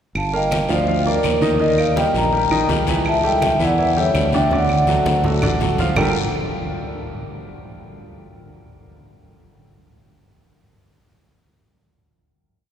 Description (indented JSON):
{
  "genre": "latin, salsa",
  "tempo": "165 BPM",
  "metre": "4/4",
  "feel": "straight",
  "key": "G minor",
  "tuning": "A4 = 440 Hz",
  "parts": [
    { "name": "modern bright fingered electric bass", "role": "bass", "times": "0.1-6.1 s", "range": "G1 to E2", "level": "-23 LUFS", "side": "equal", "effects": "none" },
    { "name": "vibraphone with soft mallets", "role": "melody", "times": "0.2-6.1 s", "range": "Bb4 to Bb5", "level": "-20 LUFS", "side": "left 1 dB", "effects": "none" },
    { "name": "claves", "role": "percussion", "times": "0.2-6.0 s", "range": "none", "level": "-32 LUFS", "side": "right 2 dB", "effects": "none" },
    { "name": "congas", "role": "percussion", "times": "0.2-6.0 s", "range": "none", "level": "-26 LUFS", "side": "equal", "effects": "none" },
    { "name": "guiro", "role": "percussion", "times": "0.2-6.0 s", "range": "none", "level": "-31 LUFS", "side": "left 6 dB", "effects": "none" },
    { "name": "bright concert grand piano", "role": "accompaniment", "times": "0.3-6.1 s", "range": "D3 to F5", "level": "-23 LUFS", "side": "right 2 dB", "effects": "none" }
  ],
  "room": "wet cathedral reverb, RT60 5.1 s",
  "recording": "recorded in a church or concert hall",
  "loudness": "-16 LUFS",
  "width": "side -9 dB against mid",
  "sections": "0.2-6.0 verse; 6.0-7.4 final chord",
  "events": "drum fill 4.5-6.0",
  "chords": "0.2 Gm7; 1.6 Eb; 3.1 A7/C#; 4.5 D; 6.0 Gm9",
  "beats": "| 0.15 0.52 0.88 1.24 | 1.60 1.97 2.33 2.69 | 3.06 3.42 3.79 4.15 | 4.51 4.88 5.24 5.60 | 5.96"
}